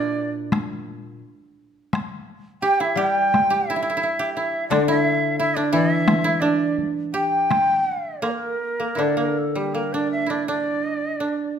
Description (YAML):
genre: japanese traditional, Japanese chamber music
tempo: 78-90 BPM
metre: 2/4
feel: rubato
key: G kumoi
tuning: A4 = 441 Hz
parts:
  - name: shakuhachi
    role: melody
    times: 0.0-0.3, 2.6-11.5 s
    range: G4 to G5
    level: -23 LUFS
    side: equal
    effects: none
  - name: koto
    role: second line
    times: 0.0-11.6 s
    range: G3 to G4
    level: -24 LUFS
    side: right 4 dB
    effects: none
  - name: koto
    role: accompaniment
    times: 0.0-11.2 s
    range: Bb2 to G3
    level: -26 LUFS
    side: left 7 dB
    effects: none
  - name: taiko ensemble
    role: percussion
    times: 0.5-8.4 s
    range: none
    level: -25 LUFS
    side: left 2 dB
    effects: none
room: moderate recital hall reverb, RT60 1.4 s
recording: none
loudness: -19 LUFS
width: side -8 dB against mid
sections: 0.0-9.0 A section; 9.0-11.6 B section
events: none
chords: none